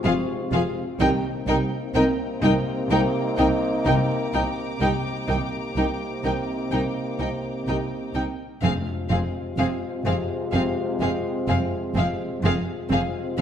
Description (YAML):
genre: cinematic, suspense film score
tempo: 63 BPM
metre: 4/4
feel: straight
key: F minor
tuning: A4 = 440 Hz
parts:
  - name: warm chamber violin section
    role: second line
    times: 0.0-13.0 s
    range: Ab4 to Bb4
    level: -31 LUFS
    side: left 3 dB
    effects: none
  - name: warm chamber viola section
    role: accompaniment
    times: 0.0-13.4 s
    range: C4 to F4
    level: -30 LUFS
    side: equal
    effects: none
  - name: clear trombone section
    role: sustained chords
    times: 0.0-13.4 s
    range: C3 to Bb3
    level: -31 LUFS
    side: right 2 dB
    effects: none
  - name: mellow French horn section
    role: sustained chords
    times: 0.0-13.4 s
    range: C4 to F4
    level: -31 LUFS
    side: left 3 dB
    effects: none
  - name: dark chamber cello section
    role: bass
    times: 0.0-13.4 s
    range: C2 to F2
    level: -30 LUFS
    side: right 2 dB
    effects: none
  - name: dark studio violin section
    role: texture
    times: 0.0-8.1 s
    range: G5 to D6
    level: -38 LUFS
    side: left 4 dB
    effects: none
  - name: felt-muted upright piano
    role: texture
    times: 0.0-13.4 s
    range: Bb4 to Db6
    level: -39 LUFS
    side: equal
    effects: none
  - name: warm chamber violin section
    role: melody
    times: 0.1-13.4 s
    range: F5 to G5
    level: -30 LUFS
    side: left 1 dB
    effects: none
  - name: dark chamber cello section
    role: riff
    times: 0.1-13.4 s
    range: F2 to C4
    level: -29 LUFS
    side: right 1 dB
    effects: none
  - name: dark chamber double bass section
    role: bass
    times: 0.1-13.4 s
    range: F1 to C2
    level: -30 LUFS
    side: right 2 dB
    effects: none
  - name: timpani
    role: percussion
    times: 1.0-2.4, 8.6-10.0 s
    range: F2 to C3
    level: -33 LUFS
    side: left 2 dB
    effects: none
room: wet recital hall reverb, RT60 1.6 s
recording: dark, warm production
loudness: -22 LUFS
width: side -9 dB against mid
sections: 0.0-13.4 A section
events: none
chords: 0.0 Fm; 1.0 Cm7; 8.6 Fm